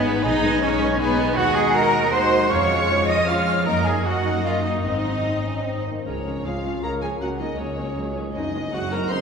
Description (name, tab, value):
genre	classical, dramatic, fast romantic movement for symphony orchestra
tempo	157 BPM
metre	3/4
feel	rubato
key	Db major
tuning	A4 = 440 Hz
part	dark symphonic violin section	melody	0.0-9.2 s	B4 to C6	-31 LUFS	left 2 dB	none
part	mellow hollow large flute ensemble	second line	0.0-9.1 s	B4 to F6	-30 LUFS	left 1 dB	none
part	rich symphonic violin section	second line	0.0-9.2 s	Ab3 to F6	-32 LUFS	equal	none
part	warm cor anglais	second line	0.0-9.2 s	B3 to F5	-29 LUFS	right 2 dB	none
part	rich symphonic viola section	accompaniment	0.0-9.2 s	Eb3 to B4	-30 LUFS	left 1 dB	none
part	warm French horn section	sustained chords	0.0-9.2 s	Ab3 to C5	-28 LUFS	left 4 dB	none
part	concert harp	arpeggios	0.0-9.2 s	F2 to C5	-31 LUFS	left 3 dB	none
part	warm trumpet	stabs	0.0-5.8 s	Eb5 to G#5	-28 LUFS	right 3 dB	none
part	dark studio double bass section	bass	0.0-9.2 s	Gb1 to Gb2	-29 LUFS	right 2 dB	none
part	rich symphonic cello section	bass	0.0-9.2 s	Db2 to Eb5	-25 LUFS	right 2 dB	none
part	warm clarinet	second line	6.1-9.2 s	Db4 to C5	-32 LUFS	right 1 dB	none
part	warm tuba	bass	6.1-9.2 s	Gb1 to Db2	-32 LUFS	right 2 dB	none
room	wet church reverb, RT60 2.9 s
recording	recorded in a church or concert hall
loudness	-19 LUFS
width	side -6 dB against mid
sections	0.0-6.1 A section; 6.1-9.2 B section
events	none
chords	0.2 G#m/B; 1.4 Ab7/Eb; 2.5 Db/F; 3.7 Ebm/Gb; 4.8 Ab; 6.1 Db; 7.2 Gb/Db; 8.4 Ab7/Gb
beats	| 0.24 0.62 0.99 | 1.36 1.74 2.12 | 2.50 2.89 3.27 | 3.66 4.04 4.44 | 4.84 5.25 5.66 | 6.07 6.46 6.84 | 7.21 7.59 7.97 | 8.36 8.74 9.11